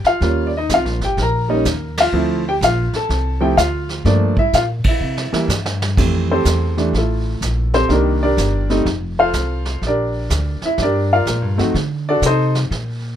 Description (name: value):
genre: jazz piano trio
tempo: 125 BPM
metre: 4/4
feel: swing 66% on 8ths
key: F major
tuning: A4 = 440 Hz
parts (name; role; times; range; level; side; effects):
- warm upright piano; melody; 0.0-12.6 s; Eb3 to Bb5; -18 LUFS; equal; none
- upright bass; bass; 0.0-13.2 s; F1 to D3; -20 LUFS; equal; none
- vintage brush drum kit; drums; 0.0-13.2 s; brushed snare drum, crash cymbal, hi-hat, kick drum, ride cymbal, snare drum; -23 LUFS; right 2 dB; none
room: little or no reverb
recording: close, detailed microphones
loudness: -15 LUFS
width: side -10 dB against mid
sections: 0.0-6.0 A section; 6.0-13.2 B section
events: band accent 1.9, 4.8; drum fill 5.0-6.0; upright piano solo 6.0-13.2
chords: 0.2 Eb9; 2.1 Dm7; 4.1 Gm7; 5.0 C; 6.0 Fmaj9; 7.9 Cm9; 8.9 F; 9.8 Bb6; 11.8 D7(no3)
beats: | 0.21 0.69 1.17 1.65 | 2.13 2.61 3.09 3.57 | 4.05 4.53 5.01 5.50 | 5.98 6.46 6.94 7.42 | 7.90 8.39 8.87 9.35 | 9.83 10.31 10.79 11.28 | 11.76 12.24 12.72